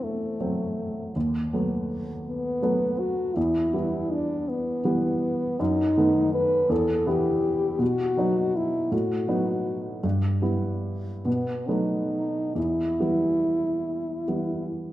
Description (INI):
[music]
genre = classical, romantic duo for French horn and grand piano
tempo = 45-56 BPM (dotted quarters)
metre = 6/8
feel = rubato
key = E minor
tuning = A4 = 440 Hz
[part]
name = warm French horn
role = melody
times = 0.0-14.7 s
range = A3 to B4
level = -25 LUFS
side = left 1 dB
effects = none
[part]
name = warm baby grand piano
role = accompaniment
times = 0.0-14.9 s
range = D#2 to E4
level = -26 LUFS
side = right 1 dB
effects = none
[sound]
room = wet recital hall reverb, RT60 1.6 s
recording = dark, warm production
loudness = -23 LUFS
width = side -14 dB against mid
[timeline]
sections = 0.0-14.9 A section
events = none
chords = 0.0 F#m7b5/E; 1.2 B7/D#; 3.4 Em; 5.6 B7/F#; 6.7 Em; 7.8 B; 8.9 B7/A; 10.0 Em/G; 11.3 B7; 12.6 Em